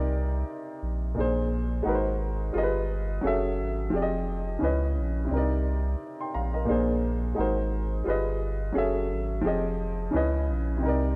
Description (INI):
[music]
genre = lo-fi hip hop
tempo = 87 BPM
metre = 4/4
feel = swing 59% on 16ths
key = C minor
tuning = A4 = 445 Hz
[part]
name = warm upright piano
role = accompaniment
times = 0.0-11.2 s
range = Bb2 to C6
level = -30 LUFS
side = equal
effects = low-pass filter
[part]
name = warm sub bass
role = bass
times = 0.0-11.2 s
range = F1 to Db2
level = -31 LUFS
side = equal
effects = none
[sound]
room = light reverb, small room ambience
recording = rough home demo mix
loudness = -28 LUFS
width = mono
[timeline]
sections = 0.0-11.2 A section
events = none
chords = 0.0 Cm9; 1.2 Bb9; 1.9 Ab9; 2.5 G7b9b13; 3.2 F#m9; 3.9 Fm9; 4.6 Dbm9; 5.3 Cm9; 6.7 Bb9; 7.4 Ab9; 8.1 G7b9b13; 8.8 F#m9; 9.4 Fm9; 10.1 Dbm9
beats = 0.47 1.16 1.85 | 2.54 3.23 3.92 4.61 | 5.30 5.99 6.68 7.37 | 8.06 8.75 9.44 10.13 | 10.82